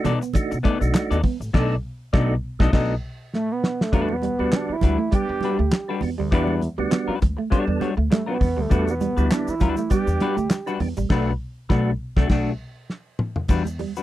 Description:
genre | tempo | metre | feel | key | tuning
funk | 100 BPM | 4/4 | swing 56% on 16ths | E minor | A4 = 440 Hz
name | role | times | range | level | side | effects
semi-hollow electric guitar | accompaniment | 0.0-14.0 s | G3 to D#5 | -26 LUFS | left 6 dB | none
percussive tonewheel organ | stabs | 0.0-12.5 s | G3 to A4 | -26 LUFS | right 3 dB | chorus vibrato, fast rotary speaker
warm soul drum kit | drums | 0.0-13.9 s | crash cymbal, handclaps, hi-hat, kick drum, snare drum, toms | -20 LUFS | equal | none
upright bass | bass | 0.1-13.8 s | A1 to B2 | -25 LUFS | equal | none
congas | percussion | 0.1-13.9 s | none | -30 LUFS | right 5 dB | none
tube shaker | percussion | 0.1-1.5, 8.7-14.0 s | none | -46 LUFS | left 5 dB | none
semi-hollow electric guitar | riff | 0.2-13.9 s | E3 to B3 | -28 LUFS | right 6 dB | none
expressive synth lead | melody | 3.3-10.8 s | A3 to G4 | -25 LUFS | right 2 dB | chorus
room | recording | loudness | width
little or no reverb | dry, close 1970s-style studio recording | -20 LUFS | side -14 dB against mid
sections
0.0-3.9 A section; 3.9-13.5 B section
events
band accent 1.5-3.9, 11.1-13.5; tonewheel organ fill 3.0-3.9; drum fill 3.3-3.9, 12.9-13.5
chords
0.0 B7#9; 3.9 Em9; 11.1 Bm7; 13.5 Em9

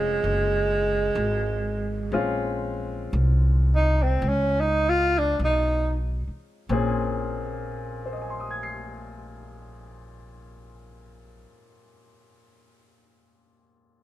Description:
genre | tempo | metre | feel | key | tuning
jazz ballad | 44-67 BPM | 4/4 | swing 69% on 8ths | Bb minor | A4 = 440 Hz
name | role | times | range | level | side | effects
breathy tenor saxophone | melody | 0.0-6.0 s | Ab3 to F4 | -23 LUFS | right 1 dB | none
warm baby grand piano | accompaniment | 0.0-14.0 s | Bb2 to C7 | -31 LUFS | left 3 dB | none
upright bass | bass | 0.0-11.4 s | F1 to Db2 | -26 LUFS | equal | none
room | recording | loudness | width
little or no reverb | close, detailed microphones | -22 LUFS | side -14 dB against mid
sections
0.0-6.7 A section; 6.7-12.1 B section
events
slowing down 0.0-6.7; tenor saxophone solo 0.0-6.7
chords
0.0 Bbm9

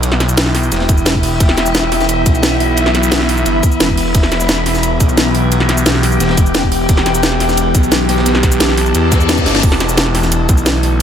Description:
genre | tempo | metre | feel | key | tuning
dark technical drum and bass | 175 BPM | 4/4 | straight | E minor | A4 = 439 Hz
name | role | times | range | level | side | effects
metallic inharmonic drone | sustained chords | 0.0-11.0 s | E3 to G4 | -18 LUFS | left 1 dB | chorus, built-in reverb, sidechain pumping
phased detuned saw bass | bass | 0.0-11.0 s | E1 to E2 | -16 LUFS | equal | phaser, tube saturation
crunchy breakbeat drum kit | drums | 0.0-10.9 s | hi-hat, ride cymbal, snare drum | -26 LUFS | equal | none
drum and bass drum kit | drums | 0.0-10.9 s | crash cymbal, hi-hat, shaker, snare drum | -16 LUFS | equal | overdrive, studio reverb
granular cloud pad | texture | 0.0-11.0 s | D5 to B5 | -21 LUFS | left 1 dB | built-in reverb, sidechain pumping
electronic kick drum | drums | 0.9-10.6 s | none | -13 LUFS | equal | overdrive, studio reverb
reverse cymbal | sound effects | 9.1-9.6 s | none | -21 LUFS | left 5 dB | none
room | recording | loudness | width
light reverb, digital ambience | none | -10 LUFS | side -9 dB against mid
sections
0.0-11.0 A section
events
reverse cymbal 9.1-9.6; drum fill 9.5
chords
0.0 Em

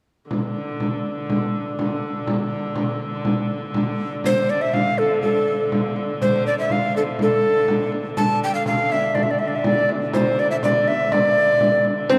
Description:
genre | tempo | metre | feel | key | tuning
medieval dance | 122 BPM | 2/4 | straight | D minor | A4 = 439 Hz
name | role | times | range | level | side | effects
rich hurdy-gurdy | drone | 0.3-12.2 s | D3 | -31 LUFS | equal | none
frame drum | percussion | 0.3-12.2 s | none | -26 LUFS | equal | none
breathy tenor recorder | melody | 4.3-12.2 s | C4 to A5 | -21 LUFS | equal | none
lute | second line | 12.1-12.2 s | C4 | -17 LUFS | equal | none
room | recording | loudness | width
wet cathedral reverb, RT60 4.6 s | dark, warm production | -21 LUFS | mono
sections
0.3-4.2 A section; 4.2-12.1 B section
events
none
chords
none

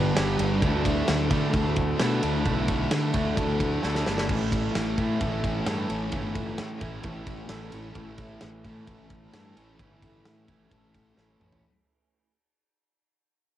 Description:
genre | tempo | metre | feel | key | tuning
rock, shoegaze and dream pop | 131 BPM | 4/4 | straight | A mixolydian | A4 = 440 Hz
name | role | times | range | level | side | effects
electric guitar through a small old amp | arpeggios | 0.0-11.6 s | E3 to A4 | -36 LUFS | left 1 dB | lush chorus, cassette tape, analog delay
crunchy overdriven guitar | riff | 0.0-11.6 s | G2 to G4 | -32 LUFS | right 8 dB | reverse reverb, cassette tape
thick fuzz guitar | riff | 0.0-11.6 s | G2 to D4 | -31 LUFS | left 6 dB | distortion, wide subtle chorus, cassette tape
fuzz fingered electric bass | bass | 0.0-11.6 s | G1 to D3 | -30 LUFS | equal | overdrive
big rock drum kit | drums | 0.2-11.6 s | crash cymbal, kick drum, ride cymbal, snare drum, toms | -30 LUFS | equal | cassette tape
room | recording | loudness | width
little or no reverb | home recording on cassette | -24 LUFS | side -12 dB against mid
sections
0.0-11.6 A section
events
fade-out 0.0-11.6; drum fill 3.8-4.3, 11.2-11.6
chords
0.0 G; 0.6 Dsus2; 4.3 A

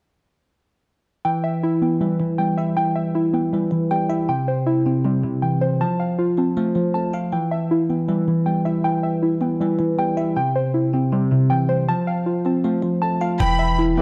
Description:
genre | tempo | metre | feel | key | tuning
hip hop, trap | 158 BPM | 4/4 | half-time | E phrygian | A4 = 442 Hz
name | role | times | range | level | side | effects
bell-like tine electric piano | accompaniment | 1.2-14.0 s | C3 to F4 | -24 LUFS | equal | phaser
warbly dusty pluck | arpeggios | 1.2-14.0 s | C3 to A5 | -24 LUFS | equal | chorus, tape echo
warm studio violin section | second line | 13.4-13.8 s | B5 | -26 LUFS | equal | none
clean 808-style bass | bass | 13.4-14.0 s | E1 | -24 LUFS | equal | none
cajon | drums | 13.4-14.0 s | none | -33 LUFS | equal | none
warm brass ensemble | stabs | 14.0 s | B1 to E3 | -25 LUFS | equal | none
room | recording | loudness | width
moderate scoring stage reverb, RT60 1.7 s, small room ambience | dark, warm production | -21 LUFS | mono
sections
1.2-13.4 A section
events
none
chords
1.2 Em; 4.3 C; 5.8 F; 7.3 Em; 10.4 C; 11.9 F; 13.4 Em

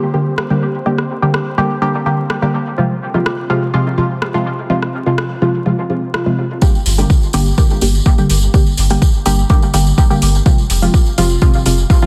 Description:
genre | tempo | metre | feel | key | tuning
dub techno | 125 BPM | 4/4 | straight | G phrygian | A4 = 441 Hz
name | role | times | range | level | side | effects
filtered dub chord stab | stabs | 0.0-12.1 s | C3 to G4 | -18 LUFS | equal | chorus, phaser, sidechain pumping, dub echo
bubbling stepped-filter texture | texture | 0.0-6.6 s | C4 to C5 | -35 LUFS | equal | none
deep house drum kit | drums | 0.4-11.8 s | hi-hat, rim click | -25 LUFS | equal | soft clipping on snare, low-pass filter on snare, low-pass filter on hats
electronic kick drum | drums | 6.6-12.0 s | none | -13 LUFS | equal | none
tambourine | percussion | 6.6-12.1 s | none | -27 LUFS | equal | none
soft dub sub bass | bass | 6.9-11.8 s | F1 to G1 | -17 LUFS | equal | sidechain pumping
room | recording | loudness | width
light reverb | dense, heavily limited modern master, vinyl crackle | -14 LUFS | mono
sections
0.0-6.6 A section; 6.6-12.1 B section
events
none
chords
0.0 Gm; 2.8 Fm; 6.6 Gm; 10.5 Fm

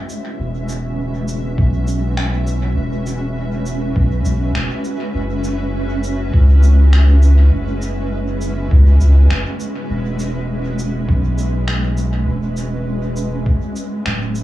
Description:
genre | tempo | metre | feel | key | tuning
ambient dub | 101 BPM | 4/4 | swing 54% on 16ths | unclear | A4 = 440 Hz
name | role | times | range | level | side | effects
granular cloud pad | sustained chords | 0.0-14.4 s | G#3 to E5 | -23 LUFS | right 1 dB | built-in reverb
electronic shaker and finger snaps | drums | 0.1-14.4 s | none | -28 LUFS | equal | overdrive, cassette tape, dub echo
soft dub sub bass | bass | 0.4-14.4 s | D1 to C#2 | -15 LUFS | equal | none
electronic kick drum | drums | 1.6-13.6 s | none | -16 LUFS | equal | cassette tape
room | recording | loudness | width
little or no reverb | home recording on cassette, small room ambience | -14 LUFS | side -15 dB against mid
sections
0.0-14.4 A section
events
band accent 14.1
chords
0.4 E; 5.1 F#9sus4; 9.9 E

